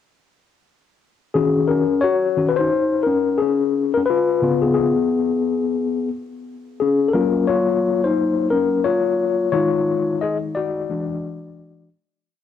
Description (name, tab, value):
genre	hip hop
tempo	88 BPM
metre	4/4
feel	swing 64% on 16ths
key	unclear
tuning	A4 = 444 Hz
part	mellow tine electric piano	solo	1.3-11.9 s	Db3 to Eb5	-17 LUFS	left 4 dB	medium stereo tremolo, analog delay
room	wet studio reverb, RT60 0.5 s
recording	home recording on cassette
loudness	-17 LUFS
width	side -9 dB against mid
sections	1.4-12.3 head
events	tine electric piano solo 1.4-12.3; fade-out 9.5-12.3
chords	1.4 Ebm7; 4.1 Db7; 6.8 Gbmaj7; 9.5 Ebm11; 10.9 E9